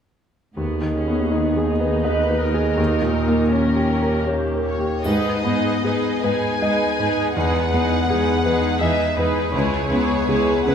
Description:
classical, romantic movement for piano and orchestra; 81 BPM; 3/4; rubato; G# minor; A4 = 440 Hz
clear concert grand piano; melody; 0.6-10.7 s; C#2 to D#5; -20 LUFS; left 1 dB
rich studio viola section; accompaniment; 0.6-10.7 s; G#3 to B4; -26 LUFS; right 2 dB
dark studio cello section; bass; 0.6-10.7 s; D#2 to C#3; -27 LUFS; right 2 dB
warm studio violin section; melody; 4.7-10.7 s; B4 to G#5; -26 LUFS; left 2 dB
warm studio violin section; second line; 5.0-10.7 s; G#4 to B4; -25 LUFS; equal
triangle; percussion; 5.0-6.6 s; -47 LUFS; left 4 dB
wet recital hall reverb, RT60 1.3 s; recorded in a church or concert hall; -18 LUFS; side -8 dB against mid
0.6-5.0 A section; 5.0-10.7 B section
0.6 G#m/D#; 2.8 D#7; 5.0 G#m; 7.3 Emaj7; 9.5 C#m7
| 0.56 1.32 2.06 | 2.79 3.52 4.26 | 5.05 5.84 6.61 | 7.35 8.08 8.81 | 9.53 10.27

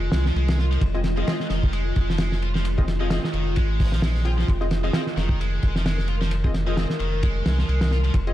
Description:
breakbeat, breaks; 131 BPM; 4/4; swing 56% on 16ths; F minor; A4 = 440 Hz
warbly tape-like pad; sustained chords; 0.0-8.3 s; Eb3 to Bb4; -31 LUFS; right 1 dB; chorus, built-in reverb, sidechain pumping
heavy high-gain guitar; riff; 0.0-8.1 s; Eb3 to F4; -32 LUFS; equal; distortion, ping-pong delay
saturated sub bass; bass; 0.0-8.3 s; F1 to C2; -23 LUFS; equal
cloth-damped thuddy drum kit; drums; 0.1-8.3 s; hi-hat, kick drum, ride cymbal, snare drum; -25 LUFS; equal
filtered dub chord stab; stabs; 0.9-8.3 s; C4 to G5; -32 LUFS; left 3 dB; lush chorus, ping-pong delay
light reverb, small room ambience; dark, warm production; -20 LUFS; side -14 dB against mid
0.0-8.3 A section
0.0 Fm7
0.36 | 0.81 1.27 1.73 2.19 | 2.65 3.10 3.56 4.02 | 4.48 4.94 5.40 5.85 | 6.31 6.77 7.23 7.69 | 8.14

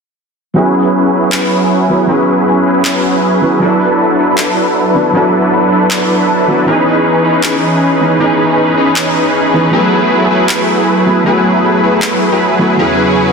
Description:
future bass; 157 BPM; 4/4; swing 55% on 16ths, half-time; E major; A4 = 440 Hz
felt-muted upright piano; accompaniment; 0.5-13.3 s; E3 to B4; -16 LUFS; right 2 dB; low-pass filter, ping-pong delay
supersaw chords; riff; 0.6-13.3 s; E3 to B4; -10 LUFS; equal; wide subtle chorus, low-pass filter, ping-pong delay
electronic handclaps; drums; 1.3-12.1 s; -19 LUFS; equal
rich studio string section; sustained chords; 12.8-13.3 s; E2 to G#4; -18 LUFS; left 1 dB
moderate lush hall reverb, RT60 2.1 s; dense, heavily limited modern master; -9 LUFS; side -5 dB against mid
0.6-13.3 A section
filter sweep on supersaw synth 0.6-13.3
0.6 E69; 3.6 D69; 6.7 C#m9; 9.7 F#m11; 12.8 E69
| 0.56 0.94 1.32 1.70 | 2.09 2.47 2.85 3.23 | 3.62 4.00 4.38 4.76 | 5.14 5.53 5.91 6.29 | 6.67 7.05 7.44 7.82 | 8.20 8.58 8.96 9.35 | 9.73 10.11 10.49 10.88 | 11.26 11.64 12.02 12.40 | 12.79 13.17

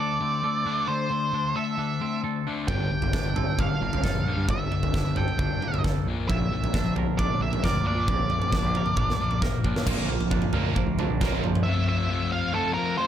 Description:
quiet-loud alternative rock; 134 BPM; 4/4; straight; A4 = 439 Hz
octave-fuzz lead guitar; melody; 0.0-13.1 s; A4 to G5; -29 LUFS; right 2 dB; distortion
twangy electric guitar; arpeggios; 0.0-11.7 s; G2 to Bb4; -36 LUFS; right 7 dB; phaser
sludgy distorted guitar; riff; 0.0-13.1 s; G2 to F4; -29 LUFS; left 6 dB; overdrive
growling fingered electric bass; bass; 2.7-11.6 s; G1 to Bb2; -31 LUFS; right 1 dB; overdrive
huge arena drum kit; drums; 2.7-11.7 s; crash cymbal, kick drum, snare drum, toms; -26 LUFS; right 1 dB
tight distorted guitar; riff; 9.9-11.6 s; Bb2 to Bb3; -30 LUFS; right 16 dB; distortion
light reverb, small room ambience; -23 LUFS; side -10 dB against mid
0.0-9.9 A section; 9.9-11.7 B section; 11.7-13.1 C section
drum fill 9.0-9.9
0.0 D5; 2.7 Gmadd9; 6.1 Bb; 11.7 F
0.44 | 0.89 1.34 1.79 2.24 | 2.69 3.14 3.59 4.04 | 4.49 4.94 5.39 5.84 | 6.29 6.74 7.19 7.63 | 8.08 8.53 8.98 9.43 | 9.87 10.32 10.76 11.21 | 11.65 12.10 12.54 12.98

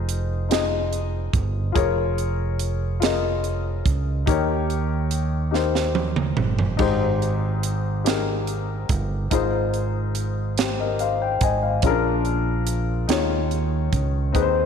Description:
slow gospel; 48 BPM (dotted quarters); 6/8; straight; A4 = 437 Hz
warm baby grand piano; accompaniment; 0.0-14.7 s; Ab2 to Ab5; -24 LUFS; left 7 dB
fingered electric bass; bass; 0.0-14.7 s; F1 to Eb2; -24 LUFS; right 2 dB
crisp fusion drum kit; drums; 0.1-14.5 s; crash cymbal, hi-hat, kick drum, snare drum, toms; -25 LUFS; right 5 dB
moderate echo chamber reverb, RT60 2.0 s; 1960s-style stereo; -20 LUFS; side -7 dB against mid
0.0-14.7 A section
drum fill 5.5-6.8
0.0 Fm7; 1.8 Bbm7/F; 4.3 Eb7; 6.8 Abmaj7; 9.3 Fm7/Ab; 11.8 Bb7; 13.1 Eb9sus4
0.49 | 1.75 3.01 | 4.27 5.53 | 6.79 8.05 | 9.31 10.57 | 11.83 13.09 | 14.35

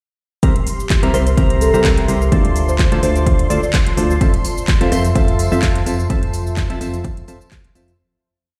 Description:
piano house; 127 BPM; 4/4; swing 54% on 16ths; F major; A4 = 440 Hz
analog string pad; sustained chords; 0.4-8.0 s; C6; -33 LUFS; equal; ensemble chorus, sidechain pumping
percussive organ stab; riff; 0.4-7.9 s; D3 to C6; -25 LUFS; equal; lush chorus, cassette tape, sidechain pumping, dub echo
solid FM bass; bass; 0.4-8.0 s; C2 to F2; -20 LUFS; equal; sidechain pumping
electronic kick drum; drums; 0.4-7.6 s; -19 LUFS; equal
house drum kit; drums; 0.4-8.0 s; cabasa, handclaps, hi-hat, rim click; -27 LUFS; equal; overdrive
warbly tape-like pad; texture; 0.6-8.0 s; F4 to Bb5; -30 LUFS; equal; chorus, built-in reverb, sidechain pumping
buzzing marimba with soft mallets; melody; 1.1-3.7 s; A4 to D5; -24 LUFS; equal; dub echo
tambourine; percussion; 4.2-8.0 s; -39 LUFS; equal
light reverb, digital ambience; played on a big sound system in a bare room, large studio reverb; -16 LUFS; mono
0.4-8.0 drop
drop 0.4-8.0; fade-out 5.5-8.0
0.4 C7; 2.3 Dm7; 4.2 Fmaj7
| 0.43 0.90 1.38 1.85 | 2.32 2.79 3.27 3.74 | 4.21 4.68 5.15 5.63 | 6.10 6.57 7.04 7.52

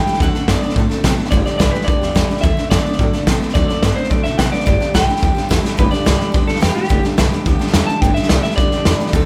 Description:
rockabilly; 215 BPM; 4/4; straight; G major; A4 = 442 Hz
electric guitar through a small old amp; melody; 0.0-9.1 s; G4 to A5; -24 LUFS; equal; analog delay
picked steel-string acoustic guitar; accompaniment; 0.0-9.3 s; G2 to A4; -25 LUFS; equal
electric guitar through a small old amp; riff; 0.0-9.3 s; G2 to B3; -26 LUFS; equal; subtle chorus
upright bass; bass; 0.0-9.3 s; G1 to C3; -22 LUFS; equal
raw garage drum kit; drums; 0.1-9.2 s; hi-hat, kick drum, snare drum; -19 LUFS; equal
light reverb; -16 LUFS; mono
0.0-5.8 A section; 5.8-9.3 B section
drum fill 5.6; clean electric guitar solo 5.8-9.3
0.2 D7; 1.3 G; 2.4 D7; 4.7 G
| 0.20 0.48 0.76 1.04 | 1.32 1.60 1.88 2.15 | 2.43 2.71 2.99 3.27 | 3.55 3.83 4.11 4.39 | 4.67 4.95 5.23 5.51 | 5.79 6.07 6.34 6.62 | 6.90 7.18 7.46 7.74 | 8.02 8.30 8.58 8.86 | 9.13

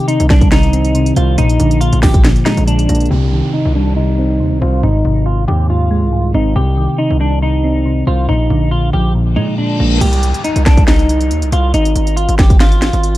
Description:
hip hop, trap; 139 BPM; 4/4; half-time; C minor; A4 = 441 Hz
clean electric guitar; melody; 0.0-13.2 s; D4 to G4; -18 LUFS; equal; analog chorus, low-pass filter
soft electric-piano-like synth keys; accompaniment; 0.0-10.0 s; Ab2 to C5; -16 LUFS; equal; chorus, low-pass filter
techno drum kit; drums; 0.1-3.1, 10.0-13.2 s; crash cymbal, hi-hat, kick drum, snare drum; -12 LUFS; equal
distorted 808-style bass; bass; 0.2-13.2 s; Ab1 to Bb2; -15 LUFS; equal; distortion
downlifter and reverse cymbal; sound effects; 3.1-13.2 s; -28 LUFS; left 2 dB
little or no reverb; dark, warm production; -10 LUFS; side -16 dB against mid
0.0-3.1 A section; 3.1-10.0 B section; 10.0-13.2 A section
filter sweep 3.1-10.0; reverse cymbal 9.4-10.0
0.0 Cm; 1.4 Bb7; 3.1 Cm; 4.8 Ab; 6.6 Cm; 8.3 Bb7; 10.0 Cm; 11.7 Ab5
0.09 0.52 0.95 | 1.38 1.81 2.24 2.67 | 3.11 3.54 3.97 4.40 | 4.83 5.26 5.70 6.13 | 6.56 6.99 7.42 7.86 | 8.29 8.72 9.15 9.58 | 10.01 10.45 10.88 11.31 | 11.74 12.17 12.60 13.04

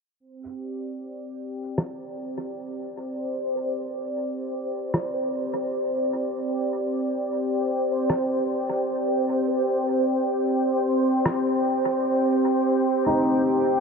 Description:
ambient dub; 76 BPM; 4/4; swing 59% on 16ths; A4 = 440 Hz
warm analog pad; sustained chords; 0.2-13.8 s; C4 to G5; -25 LUFS; equal; chorus
bubbling stepped-filter texture; texture; 0.2-13.8 s; C5; -27 LUFS; equal; chorus, built-in reverb
electronic rim click; drums; 1.8-11.4 s; -29 LUFS; equal; overdrive, dub echo
felt-muted upright piano; arpeggios; 13.1-13.8 s; Eb4; -25 LUFS; equal; low-pass filter
moderate huge ambient reverb, RT60 7.1 s; low-pass filter; -22 LUFS; side -5 dB against mid
0.2-13.8 A section
fade-in on analog synth pad 0.2-13.8; filter sweep 0.2-13.8
0.2 C5
| 0.20 0.99 1.78 2.57 | 3.36 4.15 4.94 5.73 | 6.52 7.31 8.10 8.88 | 9.67 10.46 11.25 12.04 | 12.83 13.62

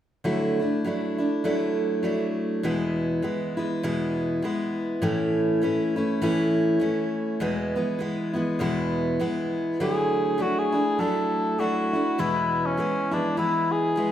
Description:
acoustic folk duo or small band; 101 BPM; 4/4; swing 58% on 8ths; A4 = 440 Hz
picked steel-string acoustic guitar; accompaniment; 0.2-14.1 s; E2 to E4; -24 LUFS; equal
mellow cor anglais; melody; 9.8-14.1 s; C#4 to A4; -25 LUFS; left 2 dB
wet large studio reverb, RT60 1.3 s; -23 LUFS; side -10 dB against mid
0.3-9.8 A section; 9.8-14.1 B section
0.3 Dadd9; 2.6 E; 5.0 A; 7.4 E; 9.8 Dadd9; 12.2 E
| 0.26 0.86 1.46 2.05 | 2.65 3.25 3.84 4.44 | 5.03 5.63 6.23 6.82 | 7.42 8.02 8.61 9.21 | 9.80 10.40 11.00 11.59 | 12.19 12.79 13.38 13.98

